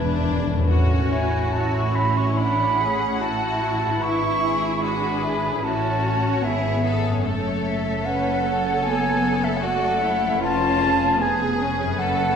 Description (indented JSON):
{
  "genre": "classical",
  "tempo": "74 BPM",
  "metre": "4/4",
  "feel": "uneven beats, rubato",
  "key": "A major",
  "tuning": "A4 = 439 Hz",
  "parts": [
    { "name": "rich symphonic violin section", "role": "melody", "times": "0.0-12.4 s", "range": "G#4 to F#5", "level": "-34 LUFS", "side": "left 4 dB", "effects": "none" },
    { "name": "rich chamber violin section", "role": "second line", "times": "0.0-12.4 s", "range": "C#4 to A4", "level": "-30 LUFS", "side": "left 4 dB", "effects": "none" },
    { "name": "rich studio viola section", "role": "accompaniment", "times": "0.0-12.4 s", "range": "A3 to B4", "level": "-28 LUFS", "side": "left 1 dB", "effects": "none" },
    { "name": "concert harp", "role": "arpeggios", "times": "0.0-12.4 s", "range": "E#2 to B5", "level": "-31 LUFS", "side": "left 6 dB", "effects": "none" },
    { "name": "rich chamber double bass section", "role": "bass", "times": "0.0-12.4 s", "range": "E1 to A1", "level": "-27 LUFS", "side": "right 2 dB", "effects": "none" },
    { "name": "rich studio cello section", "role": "bass", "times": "0.0-12.4 s", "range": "E2 to B4", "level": "-29 LUFS", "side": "right 4 dB", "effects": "none" },
    { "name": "timpani", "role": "percussion", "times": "0.0-0.7 s", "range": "E2", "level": "-23 LUFS", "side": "equal", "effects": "none" },
    { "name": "silver concert flute", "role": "second line", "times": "1.1-12.4 s", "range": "E5 to C#6", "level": "-24 LUFS", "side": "right 1 dB", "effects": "none" }
  ],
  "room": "wet concert hall reverb, RT60 1.8 s",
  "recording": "minimal, uncompressed stereo recording",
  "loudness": "-19 LUFS",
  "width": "side -7 dB against mid",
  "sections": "0.7-12.4 A section",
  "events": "timpani fill 0.0-0.7",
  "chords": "0.0 E; 0.7 A; 4.0 E7/G#; 5.6 A; 7.2 F#m; 10.4 C#7/E#"
}